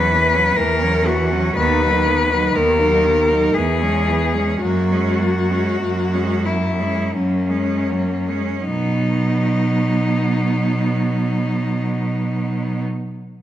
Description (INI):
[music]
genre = classical, lyrical piece for cello ensemble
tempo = 37-65 BPM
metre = 3/4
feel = rubato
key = B major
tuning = A4 = 437 Hz
[part]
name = rich cello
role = melody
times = 0.0-12.8 s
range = C#4 to B4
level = -20 LUFS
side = left 3 dB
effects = none
[part]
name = rich cello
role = second line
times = 0.0-12.8 s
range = A#3 to D#4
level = -25 LUFS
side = right 7 dB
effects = none
[part]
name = clear cello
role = accompaniment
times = 0.0-12.8 s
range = D#3 to G#3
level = -23 LUFS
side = equal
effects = none
[part]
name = rich cello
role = bass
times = 0.0-12.8 s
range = D#2 to B2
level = -22 LUFS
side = right 2 dB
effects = none
[sound]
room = wet recital hall reverb, RT60 1.5 s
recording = none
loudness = -16 LUFS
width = side -12 dB against mid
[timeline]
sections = 0.0-8.7 A section; 8.7-13.2 B section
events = slowing down 0.1-8.7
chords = 0.0 F#7/E; 1.6 B/D#; 3.5 C#m7/E; 4.6 F#add9; 8.7 B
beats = 0.57 | 1.56 2.54 3.55 | 4.63 5.82 7.14 | 8.67 10.19 11.71